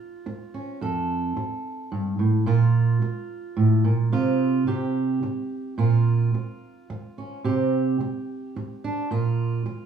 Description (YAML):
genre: folk, solo fingerstyle acoustic guitar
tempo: 109 BPM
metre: 3/4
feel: straight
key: unclear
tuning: A4 = 440 Hz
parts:
  - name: fingerpicked steel-string acoustic guitar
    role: solo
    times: 0.0-9.9 s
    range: F2 to A4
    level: -22 LUFS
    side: right 3 dB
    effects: none
room: moderate large studio reverb, RT60 0.8 s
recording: band playing live in one room, studio ambience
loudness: -21 LUFS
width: side -7 dB against mid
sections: 0.0-9.9 A section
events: none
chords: 0.0 Bbm (rootless); 0.8 F; 2.5 Bb5; 4.1 Csus4; 4.7 C5; 5.8 Bbm; 7.5 Csus2; 9.1 Bb5